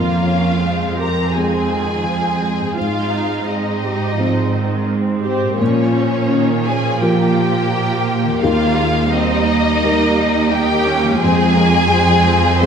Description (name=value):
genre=cinematic, emotional film score for orchestra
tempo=85 BPM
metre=4/4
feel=rubato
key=Eb mixolydian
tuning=A4 = 438 Hz
part: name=warm symphonic violin section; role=melody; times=0.0-12.7 s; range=C5 to C6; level=-22 LUFS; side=left 2 dB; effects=none
part: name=warm symphonic violin section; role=second line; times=0.0-12.7 s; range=C4 to C5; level=-21 LUFS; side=left 2 dB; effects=none
part: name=felt-muted upright piano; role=accompaniment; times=0.0-12.7 s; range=Eb2 to C5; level=-20 LUFS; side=left 1 dB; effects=none
part: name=rich symphonic viola section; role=accompaniment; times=0.0-12.7 s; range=Eb3 to G4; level=-22 LUFS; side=right 3 dB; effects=none
part: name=concert harp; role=arpeggios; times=0.0-12.7 s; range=Ab2 to F5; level=-28 LUFS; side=left 7 dB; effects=none
part: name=rich symphonic cello section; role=bass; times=0.0-12.7 s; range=Eb2 to Bb2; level=-20 LUFS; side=right 4 dB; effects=none
room=wet scoring stage reverb, RT60 1.6 s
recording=minimal, uncompressed stereo recording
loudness=-14 LUFS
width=side -7 dB against mid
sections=0.0-12.7 A section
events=none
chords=0.0 Fm; 2.8 Ab; 5.6 Bbm; 8.4 Eb; 11.2 Fm